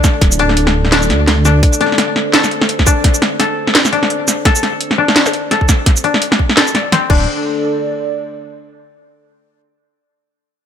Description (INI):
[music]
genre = half-time drum and bass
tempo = 170 BPM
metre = 4/4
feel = swing 58% on 16ths, half-time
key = unclear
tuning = A4 = 440 Hz
[part]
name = dark analog pad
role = sustained chords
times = 0.0-8.6 s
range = D4 to D5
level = -22 LUFS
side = right 2 dB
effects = chorus, sidechain pumping
[part]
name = koto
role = arpeggios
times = 0.0-7.3 s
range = C4 to D5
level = -17 LUFS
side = left 6 dB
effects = low-pass filter, ping-pong delay
[part]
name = drum and bass drum kit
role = drums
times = 0.0-7.2 s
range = crash cymbal, hi-hat, shaker, snare drum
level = -14 LUFS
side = right 1 dB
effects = none
[part]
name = electronic kick drum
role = drums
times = 0.0-7.2 s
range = none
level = -12 LUFS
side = equal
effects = none
[part]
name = dark detuned saw bass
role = bass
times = 0.2-1.6, 7.1-7.3 s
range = D1 to D2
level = -14 LUFS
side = equal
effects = none
[sound]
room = light reverb, digital ambience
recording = none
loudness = -11 LUFS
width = side -8 dB against mid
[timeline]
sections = 0.0-7.3 A section; 7.3-8.7 B section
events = none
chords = 0.0 D5